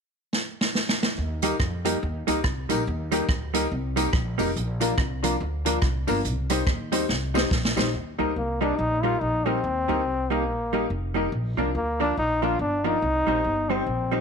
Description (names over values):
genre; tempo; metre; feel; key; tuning
ska; 142 BPM; 4/4; swing 60% on 8ths; Eb major; A4 = 440 Hz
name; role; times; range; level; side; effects
swinging big-band drum kit; drums; 0.3-7.9 s; hi-hat, kick drum, rim click, snare drum; -26 LUFS; right 1 dB; none
upright bass; bass; 1.2-14.2 s; F1 to F2; -29 LUFS; equal; none
vintage hollow-body jazz guitar; accompaniment; 1.4-14.2 s; F3 to Eb4; -29 LUFS; right 14 dB; none
clear upright piano; stabs; 1.4-14.2 s; D4 to C5; -29 LUFS; left 12 dB; tape echo
tambourine; percussion; 1.4-7.8 s; none; -41 LUFS; left 14 dB; none
clear trombone; melody; 8.4-14.2 s; Bb3 to F4; -25 LUFS; left 2 dB; none
room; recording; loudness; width
light reverb, studio ambience; 1960s-style stereo with parts hard left and right; -22 LUFS; side -6 dB against mid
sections
0.0-1.2 A section; 1.2-7.9 B section; 7.9-14.2 C section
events
drum fill 0.3-1.2, 7.1-7.9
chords
0.0 N.C.; 1.2 Eb; 4.6 Bb; 6.2 Cm; 7.9 Eb; 11.3 Bb; 13.0 Cm